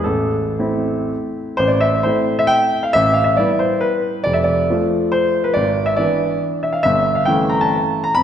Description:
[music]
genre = classical, romantic triple-time dance for piano with dotted rhythms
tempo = 107-148 BPM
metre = 3/4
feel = rubato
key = A minor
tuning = A4 = 436 Hz
[part]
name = warm grand piano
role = solo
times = 0.0-8.2 s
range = F1 to B5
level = -15 LUFS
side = equal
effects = none
[sound]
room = wet scoring stage reverb, RT60 1.7 s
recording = recorded in a church or concert hall, nothing above 10.3 kHz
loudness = -15 LUFS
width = side -9 dB against mid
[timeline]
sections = 0.0-1.6 A section; 1.6-8.2 B section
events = none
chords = 0.0 Am; 2.9 Em/A; 4.3 Dm/F; 5.6 E7/G#; 6.8 A7/G

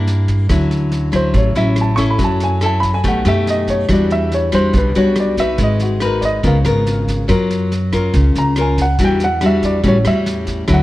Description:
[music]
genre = bossa nova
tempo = 141 BPM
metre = 4/4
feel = straight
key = D major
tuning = A4 = 441 Hz
[part]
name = warm baby grand piano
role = melody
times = 0.0-10.8 s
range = F#4 to C#6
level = -20 LUFS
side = right 1 dB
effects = none
[part]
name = nylon-string guitar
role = accompaniment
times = 0.0-10.8 s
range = A2 to B4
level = -17 LUFS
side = left 2 dB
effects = none
[part]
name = upright bass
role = bass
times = 0.0-10.8 s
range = G#1 to G2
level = -17 LUFS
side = equal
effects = none
[part]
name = vintage brush drum kit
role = drums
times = 0.1-10.8 s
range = kick drum, rim click, snare drum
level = -23 LUFS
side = equal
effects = none
[sound]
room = light reverb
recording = none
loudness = -13 LUFS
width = side -16 dB against mid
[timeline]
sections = 0.5-10.8 A section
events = grand piano solo 0.5-10.8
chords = 0.5 Dmaj9; 2.2 F#m7; 3.0 B7b13; 3.9 Em9; 5.6 G#m7; 6.4 C#6; 7.3 F#maj7; 9.0 Em9; 9.8 A6

